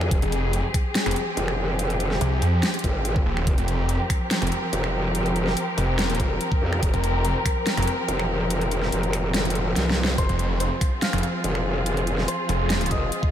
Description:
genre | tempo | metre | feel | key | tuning
heavy wobble dubstep | 143 BPM | 4/4 | half-time | F minor | A4 = 439 Hz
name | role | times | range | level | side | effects
warm studio string section | sustained chords | 0.0-13.3 s | F3 to Bb4 | -27 LUFS | left 1 dB | sidechain pumping, low-pass filter
growl bass | bass | 0.0-13.1 s | F1 to F2 | -25 LUFS | equal | chorus, overdrive
dubstep drum kit | drums | 0.0-13.2 s | finger snaps, hi-hat, snare drum | -29 LUFS | equal | overdrive
electronic kick drum | drums | 0.1-7.5, 10.2-13.3 s | none | -23 LUFS | equal | overdrive
snarling distorted saw bass | bass | 0.2-12.9 s | Eb1 to F2 | -23 LUFS | equal | distortion, overdrive
warm grand piano | melody | 10.2-13.3 s | C5 to F6 | -31 LUFS | left 1 dB | analog delay
room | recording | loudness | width
light reverb, digital ambience | none | -21 LUFS | side -10 dB against mid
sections
0.0-13.3 A section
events
kick drops out 9.3-10.2; drum fill 9.8-10.2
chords
0.0 Fmadd9

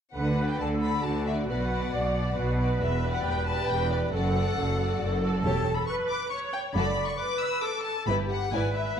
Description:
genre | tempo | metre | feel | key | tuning
quick classical-period movement for symphony orchestra | 136 BPM | 3/4 | rubato | D major | A4 = 439 Hz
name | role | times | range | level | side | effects
rich chamber violin section | melody | 0.1-9.0 s | D5 to E6 | -33 LUFS | left 5 dB | none
clear symphonic viola section | accompaniment | 0.1-9.0 s | F#4 to D5 | -31 LUFS | right 1 dB | none
clear chamber cello section | bass | 0.1-8.9 s | E2 to D3 | -30 LUFS | right 1 dB | none
clear chamber double bass section | bass | 0.1-8.9 s | E1 to D2 | -31 LUFS | right 2 dB | none
rich symphonic violin section | second line | 0.4-8.7 s | E4 to D5 | -36 LUFS | left 3 dB | none
room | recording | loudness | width
moderate concert hall reverb, RT60 1.7 s | dark, warm production | -25 LUFS | side -8 dB against mid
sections
0.2-9.0 A section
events
none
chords
0.2 D; 1.5 Bm; 2.8 Em7; 4.1 D/F#; 5.4 C#dim/E; 6.8 D/F#; 8.1 Em/G; 8.5 E7/G#

